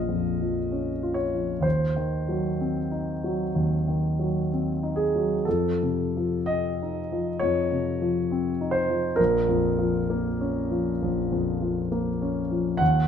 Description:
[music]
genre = classical, romantic nocturne for solo piano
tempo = 65 BPM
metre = 4/4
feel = uneven beats, rubato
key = Bb minor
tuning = A4 = 440 Hz
[part]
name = warm concert grand piano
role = solo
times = 0.0-13.1 s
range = Bb1 to Gb5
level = -23 LUFS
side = equal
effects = none
[sound]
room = moderate large studio reverb, RT60 1.4 s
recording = dark, warm production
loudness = -23 LUFS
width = side -8 dB against mid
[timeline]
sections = 0.0-13.1 A section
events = none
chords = 0.0 Bbm; 1.6 Cdim/Eb; 5.5 F7; 9.2 Bbm

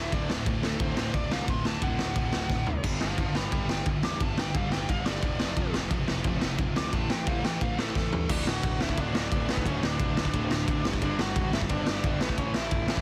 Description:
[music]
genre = punk rock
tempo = 176 BPM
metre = 4/4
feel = straight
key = D major from 8.3 s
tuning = A4 = 445 Hz
[part]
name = dark smooth lead guitar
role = melody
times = 0.0-13.0 s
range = B3 to D6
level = -37 LUFS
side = equal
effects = overdrive
[part]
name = distorted electric guitar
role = riff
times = 0.0-13.0 s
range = D2 to A3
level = -40 LUFS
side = equal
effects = none
[part]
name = heavy high-gain guitar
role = riff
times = 0.0-8.3 s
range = D2 to A3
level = -41 LUFS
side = equal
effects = none
[part]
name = overdriven semi-hollow guitar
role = riff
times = 0.0-13.0 s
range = D2 to A3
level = -38 LUFS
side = equal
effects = none
[part]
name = fuzz picked electric bass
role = bass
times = 0.0-13.0 s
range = D1 to G2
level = -37 LUFS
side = equal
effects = overdrive
[part]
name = raw garage drum kit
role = drums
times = 0.1-13.0 s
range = crash cymbal, kick drum, ride cymbal, snare drum, toms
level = -31 LUFS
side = equal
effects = none
[sound]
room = light reverb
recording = dense, heavily limited modern master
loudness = -28 LUFS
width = mono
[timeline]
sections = 0.0-8.3 A section; 8.3-13.0 B section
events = lead electric guitar solo 0.0-8.3; drum fill 2.5-2.8, 8.0-8.3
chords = 0.0 D; 2.8 G5; 5.4 F5; 6.9 A5; 8.3 D; 10.8 G5; 12.2 A

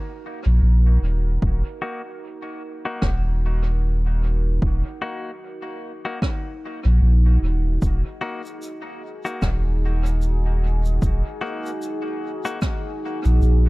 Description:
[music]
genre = ambient dub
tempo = 75 BPM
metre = 4/4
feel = swing 59% on 16ths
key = Eb minor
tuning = A4 = 445 Hz
[part]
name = deep dark ambient pad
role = sustained chords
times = 0.0-13.7 s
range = Eb4 to Bb4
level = -33 LUFS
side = right 1 dB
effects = chorus, built-in reverb
[part]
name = warm sub bass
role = bass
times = 0.5-13.7 s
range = Eb1 to Bb1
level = -17 LUFS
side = equal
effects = none
[part]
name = electronic kick drum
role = drums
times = 1.4-12.8 s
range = none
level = -24 LUFS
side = equal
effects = overdrive
[part]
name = direct-recorded clean electric guitar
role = stabs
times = 1.8-12.6 s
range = Bb3 to Gb4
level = -33 LUFS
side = left 2 dB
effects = spring reverb, low-pass filter, dub echo
[part]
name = rim click and shaker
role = drums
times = 3.0-13.6 s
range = none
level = -36 LUFS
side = right 2 dB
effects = dub echo
[sound]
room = little or no reverb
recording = echo-heavy mix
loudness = -19 LUFS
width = side -22 dB against mid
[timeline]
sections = 0.0-13.7 A section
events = fade-in on ambient pad 0.0-13.7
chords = 0.0 Ebm

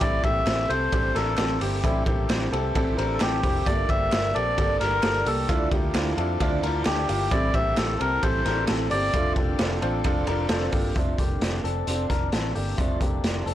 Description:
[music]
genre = jangly indie pop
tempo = 132 BPM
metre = 4/4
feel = straight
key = F major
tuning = A4 = 441 Hz
[part]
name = melodica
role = melody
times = 0.0-9.3 s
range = G4 to E5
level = -26 LUFS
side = left 1 dB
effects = ping-pong delay
[part]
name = fingerpicked twelve-string acoustic guitar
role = accompaniment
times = 0.0-13.5 s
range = G2 to A4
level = -33 LUFS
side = right 5 dB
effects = none
[part]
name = warm upright piano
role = accompaniment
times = 0.0-11.0 s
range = Bb3 to C5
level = -30 LUFS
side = right 1 dB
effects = none
[part]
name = electric guitar through a small old amp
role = arpeggios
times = 0.0-13.5 s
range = G3 to Bb4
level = -32 LUFS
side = left 6 dB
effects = ping-pong delay
[part]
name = vintage muted fingered electric bass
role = bass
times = 0.0-13.5 s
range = F1 to F2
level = -29 LUFS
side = equal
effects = none
[part]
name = raw garage drum kit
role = drums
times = 0.0-13.5 s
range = hi-hat, kick drum, ride cymbal, snare drum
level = -26 LUFS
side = equal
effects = none
[part]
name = group handclap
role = percussion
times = 0.5-10.6 s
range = none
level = -40 LUFS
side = right 6 dB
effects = none
[sound]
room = light reverb, small room ambience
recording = blown-out, overdriven recording, vinyl crackle, overdrive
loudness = -22 LUFS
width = side -12 dB against mid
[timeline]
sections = 0.0-11.0 A section; 11.0-13.5 B section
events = none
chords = 0.0 Am7; 3.7 Gmadd9; 5.5 Dmadd9; 7.3 Am7; 9.1 F6

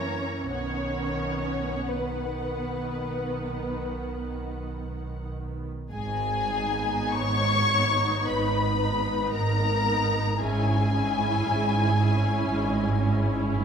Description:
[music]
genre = classical, slow romantic movement for string orchestra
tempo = 43-58 BPM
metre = 4/4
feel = rubato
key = B major, G# minor from 5.9 s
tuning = A4 = 440 Hz
[part]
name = muted symphonic violin section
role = melody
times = 0.0-13.6 s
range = F#5 to C#6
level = -29 LUFS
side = left 4 dB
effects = none
[part]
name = muted symphonic violin section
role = second line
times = 0.0-13.6 s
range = G#4 to C#5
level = -32 LUFS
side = left 3 dB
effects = none
[part]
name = muted studio viola section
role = accompaniment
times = 0.0-13.6 s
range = D#3 to E4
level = -32 LUFS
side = right 1 dB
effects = none
[part]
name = muted studio double bass section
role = bass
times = 0.0-13.6 s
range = G#1 to F#2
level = -31 LUFS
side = right 3 dB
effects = none
[part]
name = muted symphonic cello section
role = bass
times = 0.0-13.6 s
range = G#2 to C#4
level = -30 LUFS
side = right 2 dB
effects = none
[sound]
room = moderate scoring stage reverb, RT60 1.7 s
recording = none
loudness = -24 LUFS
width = side -7 dB against mid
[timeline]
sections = 0.0-5.9 A section; 5.9-13.6 B section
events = none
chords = 0.0 F#7; 0.5 B; 5.9 G#m; 10.4 C#m/G#

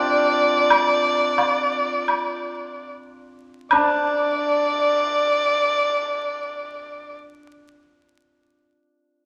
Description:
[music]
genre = chinese traditional, Chinese chamber ensemble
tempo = 70-96 BPM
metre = 4/4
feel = rubato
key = D yu mode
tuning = A4 = 440 Hz
[part]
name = dark erhu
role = melody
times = 0.0-7.1 s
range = D5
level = -23 LUFS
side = equal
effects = none
[part]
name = hammered dulcimer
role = second line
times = 0.0-7.5 s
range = C4 to G4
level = -27 LUFS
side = equal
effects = none
[part]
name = woodblock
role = percussion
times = 0.7-4.1 s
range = none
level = -24 LUFS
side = equal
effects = none
[sound]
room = wet recital hall reverb, RT60 1.6 s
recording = vinyl crackle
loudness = -20 LUFS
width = mono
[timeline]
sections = 0.0-3.7 A section; 3.7-7.1 B section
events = slowing down 0.0-3.7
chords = none

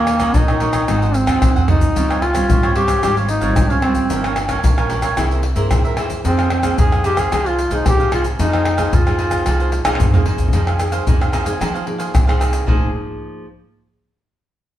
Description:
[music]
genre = samba and choro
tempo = 112 BPM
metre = 4/4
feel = straight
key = F minor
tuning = A4 = 440 Hz
[part]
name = warm duduk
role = melody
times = 0.0-10.0 s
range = Bb3 to Ab4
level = -19 LUFS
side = equal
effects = none
[part]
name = cavaquinho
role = accompaniment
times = 0.0-12.9 s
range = Eb4 to Gb5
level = -25 LUFS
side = right 4 dB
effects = none
[part]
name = nylon-string guitar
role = accompaniment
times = 0.0-13.4 s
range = G2 to Ab4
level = -25 LUFS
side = equal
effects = none
[part]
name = upright bass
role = bass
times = 0.0-12.9 s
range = F1 to F3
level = -21 LUFS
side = equal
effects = none
[part]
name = egg shaker, pandeiro, tamborim and surdo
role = percussion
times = 0.1-12.8 s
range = none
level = -18 LUFS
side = equal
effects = none
[sound]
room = wet studio reverb, RT60 0.9 s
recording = heard from further back in the room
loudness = -14 LUFS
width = side -12 dB against mid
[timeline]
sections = 0.0-10.5 A section; 10.5-12.7 B section; 12.7-14.8 C section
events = drum fill 1.3-2.0, 9.9-10.5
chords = 0.0 Ebm7; 0.9 Ab13; 2.0 Dbmaj7#11; 4.1 Gm7b5; 5.2 C7b13; 6.2 Fm11; 10.5 Fm7

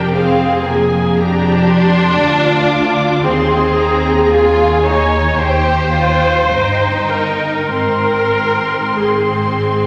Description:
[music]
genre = classical, slow romantic movement for string orchestra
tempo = 47-59 BPM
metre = 4/4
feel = rubato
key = Ab major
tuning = A4 = 441 Hz
[part]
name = rich symphonic violin section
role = melody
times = 0.0-9.9 s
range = F5 to D6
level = -24 LUFS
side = equal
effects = none
[part]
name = clear studio violin section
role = second line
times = 0.0-9.9 s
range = Bb3 to G4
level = -20 LUFS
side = equal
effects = none
[part]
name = rich studio viola section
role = accompaniment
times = 0.0-9.9 s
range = F4 to Db5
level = -18 LUFS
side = equal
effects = none
[part]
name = rich symphonic cello section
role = bass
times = 0.0-9.9 s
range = D2 to Ab2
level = -22 LUFS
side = equal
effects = none
[part]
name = warm symphonic double bass section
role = bass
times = 0.0-9.9 s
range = F1 to Eb2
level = -23 LUFS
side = equal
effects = none
[sound]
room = wet scoring stage reverb, RT60 2.0 s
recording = none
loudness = -14 LUFS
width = mono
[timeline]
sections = 0.0-9.9 A section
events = none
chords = 0.0 Bb7/F; 3.2 Ab/Eb; 5.4 Eb; 7.7 Ab

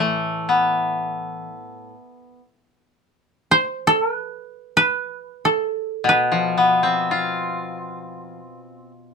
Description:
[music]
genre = japanese traditional, Japanese chamber music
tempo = free time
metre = none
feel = none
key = unclear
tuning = A4 = 440 Hz
[part]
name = koto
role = melody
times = 0.0-7.9 s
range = A4 to C5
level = -19 LUFS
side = right 2 dB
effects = none
[part]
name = koto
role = accompaniment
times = 0.0-9.1 s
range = A2 to F4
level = -20 LUFS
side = left 2 dB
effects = none
[sound]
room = light reverb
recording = minimal, uncompressed stereo recording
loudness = -18 LUFS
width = side -5 dB against mid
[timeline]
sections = 0.0-9.1 A section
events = none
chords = none

